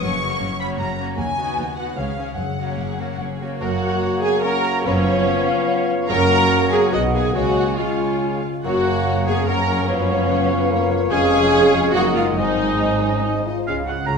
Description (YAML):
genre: classical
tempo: 136-158 BPM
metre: 3/4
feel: rubato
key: F# major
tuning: A4 = 440 Hz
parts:
  - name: warm symphonic violin section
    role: melody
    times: 0.0-14.1 s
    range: Ab4 to C#6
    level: -29 LUFS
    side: left 3 dB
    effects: none
  - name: dark symphonic violin section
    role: second line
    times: 0.0-14.2 s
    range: F#4 to A#5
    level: -29 LUFS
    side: left 1 dB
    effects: none
  - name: rich symphonic viola section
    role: accompaniment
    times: 0.0-14.1 s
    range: G#3 to A#4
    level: -22 LUFS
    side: right 1 dB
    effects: none
  - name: concert harp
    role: arpeggios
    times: 0.0-14.2 s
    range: F2 to C#6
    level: -28 LUFS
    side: left 7 dB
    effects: none
  - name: rich symphonic double bass section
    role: bass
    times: 0.0-14.2 s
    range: F1 to D#2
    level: -28 LUFS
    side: right 4 dB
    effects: none
  - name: warm symphonic cello section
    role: bass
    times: 0.0-14.2 s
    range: C#2 to C#3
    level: -27 LUFS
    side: right 2 dB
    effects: none
  - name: clear oboe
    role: second line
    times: 3.6-14.2 s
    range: C#5 to Bb5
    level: -28 LUFS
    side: right 3 dB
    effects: none
  - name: dark clarinet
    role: second line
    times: 3.6-13.8 s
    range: E#3 to C#4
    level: -29 LUFS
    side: equal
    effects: none
  - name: hollow concert flute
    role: second line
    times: 3.6-14.2 s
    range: F5 to Bb5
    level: -28 LUFS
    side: left 2 dB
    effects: none
  - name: dark bassoon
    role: accompaniment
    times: 3.6-13.8 s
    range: G#3 to C4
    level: -28 LUFS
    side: left 1 dB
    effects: none
  - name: mellow French horn section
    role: sustained chords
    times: 3.6-14.2 s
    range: G#3 to Ab4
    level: -26 LUFS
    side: left 4 dB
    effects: none
room: wet scoring stage reverb, RT60 1.8 s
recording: minimal, uncompressed stereo recording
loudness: -17 LUFS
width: side -5 dB against mid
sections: 0.0-3.6 A section; 3.6-13.7 B section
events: none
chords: 0.0 F#; 1.2 B/D#; 2.0 C#; 2.4 F#; 4.9 C#7/F#; 6.1 F#; 6.9 B; 7.4 C#; 8.6 F#; 9.9 C#7/F#; 11.1 Db/F; 11.9 Ebm/Gb; 12.4 Ab